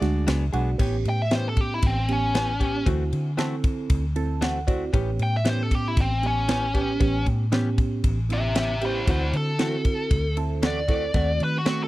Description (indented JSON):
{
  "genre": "straight-eighth soul blues",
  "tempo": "116 BPM",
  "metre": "4/4",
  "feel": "straight",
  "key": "A mixolydian",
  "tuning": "A4 = 440 Hz",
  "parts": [
    { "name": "reed electric piano", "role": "accompaniment", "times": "0.0-11.9 s", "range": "G#3 to A5", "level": "-30 LUFS", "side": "right 4 dB", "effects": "phaser" },
    { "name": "vintage muted fingered electric bass", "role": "bass", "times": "0.0-11.9 s", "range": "A1 to D#3", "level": "-26 LUFS", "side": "equal", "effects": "none" },
    { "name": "tight funk drum kit", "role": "drums", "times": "0.0-11.8 s", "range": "crash cymbal, kick drum, ride cymbal, snare drum", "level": "-24 LUFS", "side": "equal", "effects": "none" },
    { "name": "direct-recorded clean electric guitar", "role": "stabs", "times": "0.3-11.8 s", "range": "E3 to G#4", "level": "-31 LUFS", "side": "left 4 dB", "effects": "wide subtle chorus" },
    { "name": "biting lead guitar", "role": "melody", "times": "1.1-11.9 s", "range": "C4 to G5", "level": "-27 LUFS", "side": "left 1 dB", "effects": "overdrive" }
  ],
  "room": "little or no reverb",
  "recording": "dry, close 1970s-style studio recording",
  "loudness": "-21 LUFS",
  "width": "side -17 dB against mid",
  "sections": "0.8-11.9 A section",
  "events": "lead electric guitar solo 0.8-11.9; reed electric piano fill 3.9-4.9",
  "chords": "0.0 E9 (rootless); 0.8 A9; 2.9 D9; 4.9 A9; 9.1 D9; 11.1 D#dim7",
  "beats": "0.28 | 0.80 1.32 1.83 2.35 | 2.87 3.39 3.90 4.42 | 4.94 5.46 5.97 6.49 | 7.01 7.53 8.04 8.56 | 9.08 9.60 10.11 10.63 | 11.15 11.66"
}